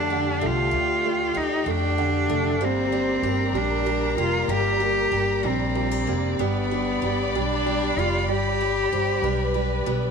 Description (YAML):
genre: six-eight pop ballad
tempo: 64 BPM (dotted quarters)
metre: 6/8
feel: straight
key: G minor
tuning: A4 = 440 Hz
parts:
  - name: clear cello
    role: melody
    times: 0.0-9.8 s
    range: B3 to G4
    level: -24 LUFS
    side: left 1 dB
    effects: none
  - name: dark studio violin section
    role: second line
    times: 0.0-10.1 s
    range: G4 to D5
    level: -31 LUFS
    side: equal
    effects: none
  - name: clear baby grand piano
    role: accompaniment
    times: 0.0-10.1 s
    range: D3 to A3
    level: -29 LUFS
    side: right 11 dB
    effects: none
  - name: warm studio string section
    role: sustained chords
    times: 0.0-10.1 s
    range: G4 to B5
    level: -32 LUFS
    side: left 3 dB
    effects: none
  - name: picked steel-string acoustic guitar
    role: arpeggios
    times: 0.0-10.1 s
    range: A3 to G4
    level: -34 LUFS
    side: left 13 dB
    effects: none
  - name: upright bass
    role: bass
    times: 0.0-10.1 s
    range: F1 to F2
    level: -28 LUFS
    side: left 1 dB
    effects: none
room: light reverb, studio reverb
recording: 1960s-style stereo with parts hard left and right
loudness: -21 LUFS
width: side -6 dB against mid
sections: 0.0-10.1 A section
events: none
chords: 0.0 Dsus4; 2.6 Gm; 6.4 G